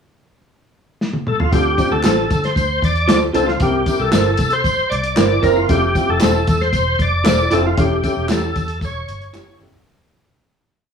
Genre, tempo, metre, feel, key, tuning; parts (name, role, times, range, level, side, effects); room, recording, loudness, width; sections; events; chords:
uptempo 1960s-style soul; 115 BPM; 4/4; straight; D minor; A4 = 439 Hz
warm soul drum kit; drums; 1.0-9.9 s; hi-hat, kick drum, snare drum, toms; -19 LUFS; left 1 dB
tonewheel organ; melody; 1.3-9.6 s; F4 to D5; -19 LUFS; left 1 dB; overdrive, chorus vibrato, slow rotary speaker
warm upright piano; accompaniment; 1.5-9.7 s; C3 to C5; -22 LUFS; left 2 dB
vintage muted fingered electric bass; bass; 1.5-9.8 s; E1 to D3; -22 LUFS; equal
tambourine and handclaps; percussion; 1.5-9.7 s; -31 LUFS; left 2 dB
electric guitar through a small old amp; stabs; 2.0-9.7 s; E4 to C#5; -19 LUFS; right 4 dB
wet studio reverb, RT60 0.7 s; band playing live in one room, small room ambience; -14 LUFS; side -6 dB against mid
0.0-1.5 pickup bar; 1.5-9.9 verse
drum fill 1.0-1.5, 9.3-9.9; fade-out 7.8-9.9
0.0 N.C.; 1.5 Dm7; 3.6 C7; 5.7 Fmaj7; 7.8 A7/E